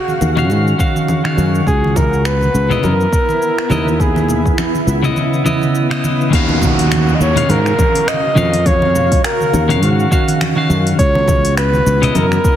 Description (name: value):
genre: sunset chillout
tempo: 103 BPM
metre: 4/4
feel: swing 57% on 16ths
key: unclear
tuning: A4 = 441 Hz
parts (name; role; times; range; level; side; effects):
- warm flugelhorn; melody; 0.0-12.6 s; Gb4 to Eb5; -18 LUFS; equal; tape echo
- shimmering ambient pad; sustained chords; 0.0-12.6 s; Db3 to F5; -22 LUFS; right 1 dB; chorus, built-in reverb
- smooth R&B drum kit; drums; 0.1-12.6 s; congas, finger snaps, hi-hat, shaker; -23 LUFS; left 2 dB; none
- congas; percussion; 0.1-12.3 s; none; -24 LUFS; right 2 dB; none
- sustaining fretless electric bass; bass; 0.2-12.4 s; Db2 to Ab2; -16 LUFS; equal; analog chorus
- clean electric guitar; accompaniment; 0.4-12.3 s; Db3 to F5; -18 LUFS; moving between left 5 dB and right 2 dB; auto-pan, ping-pong delay
- electronic kick drum; drums; 0.8-12.6 s; none; -16 LUFS; equal; none
- downlifter; sound effects; 6.3-11.0 s; none; -24 LUFS; equal; none
room: light reverb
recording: heavily compressed radio sound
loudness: -12 LUFS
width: side -10 dB against mid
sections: 0.0-6.3 A section; 6.3-12.6 B section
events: none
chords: 0.0 Ebm9; 1.7 Dbm9; 6.3 Ebm9; 11.0 Dbm9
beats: 0.50 1.08 | 1.67 2.25 2.83 3.42 | 4.00 4.58 5.16 5.75 | 6.33 6.91 7.49 8.07 | 8.66 9.24 9.82 10.40 | 10.99 11.57 12.15